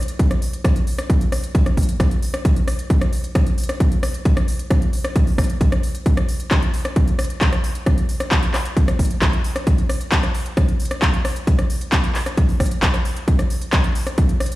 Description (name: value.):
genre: techno.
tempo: 133 BPM.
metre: 4/4.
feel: straight.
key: none.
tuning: none.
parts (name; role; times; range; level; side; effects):
techno drum kit; drums; 0.0-14.6 s; handclaps, hi-hat, rim click; -25 LUFS; equal; overdrive, sidechain pumping on hats, studio reverb.
electronic kick drum; drums; 0.2-14.3 s; none; -17 LUFS; equal; overdrive, studio reverb.
room: little or no reverb.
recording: played on a big sound system in a bare room, stone room reverb.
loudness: -17 LUFS.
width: side -17 dB against mid.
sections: 0.0-14.6 A section.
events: none.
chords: none.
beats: 0.19 | 0.65 1.10 1.55 2.00 | 2.45 2.90 3.35 3.80 | 4.25 4.71 5.16 5.61 | 6.06 6.51 6.96 7.41 | 7.86 8.31 8.77 9.22 | 9.67 10.12 10.57 11.02 | 11.47 11.92 12.38 12.83 | 13.28 13.73 14.18.